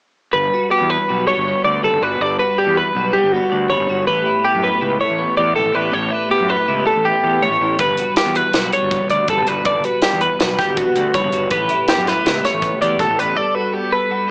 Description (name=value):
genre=math rock and midwest emo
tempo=161 BPM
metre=5/4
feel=straight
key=G lydian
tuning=A4 = 440 Hz
part: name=twelve-string electric guitar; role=accompaniment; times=0.3-14.3 s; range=G2 to D5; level=-25 LUFS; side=equal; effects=ensemble chorus, cassette tape
part: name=twelve-string electric guitar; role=arpeggios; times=0.3-14.3 s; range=F#4 to D5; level=-19 LUFS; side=equal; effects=cassette tape, analog delay
part: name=fuzz fingered electric bass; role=bass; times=0.3-13.3 s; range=G1 to F#2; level=-28 LUFS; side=equal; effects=overdrive
part: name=crisp fusion drum kit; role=drums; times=7.8-13.3 s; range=hi-hat, kick drum, snare drum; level=-24 LUFS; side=equal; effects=cassette tape
room=light reverb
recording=home recording on cassette, small speaker sound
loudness=-17 LUFS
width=mono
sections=0.3-14.3 A section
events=none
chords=0.3 Gmaj7; 4.1 A9; 7.8 Gmaj7; 11.5 A9; 13.4 Gmaj9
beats=| 0.34 0.72 1.09 1.46 1.83 | 2.21 2.58 2.95 3.33 3.70 | 4.07 4.44 4.82 5.19 5.56 | 5.93 6.31 6.68 7.05 7.42 | 7.80 8.17 8.54 8.91 9.29 | 9.66 10.03 10.40 10.77 11.14 | 11.51 11.88 12.25 12.62 12.99 | 13.36 13.73 14.10